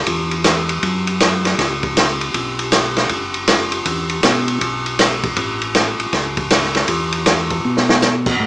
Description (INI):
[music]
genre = soul jazz organ trio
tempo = 158 BPM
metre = 4/4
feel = swing 65% on 8ths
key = unclear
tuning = A4 = 440 Hz
[part]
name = mellow tonewheel organ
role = bass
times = 0.0-8.5 s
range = F#1 to B2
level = -23 LUFS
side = equal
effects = slow rotary speaker
[part]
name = open jazz drum kit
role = drums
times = 0.1-8.5 s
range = crash cymbal, hi-hat, kick drum, ride cymbal, snare drum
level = -15 LUFS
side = equal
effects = none
[sound]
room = moderate club reverb, RT60 0.5 s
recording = small speaker sound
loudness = -14 LUFS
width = side -22 dB against mid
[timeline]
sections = 0.0-8.4 A section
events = drum fill 7.6-8.0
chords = none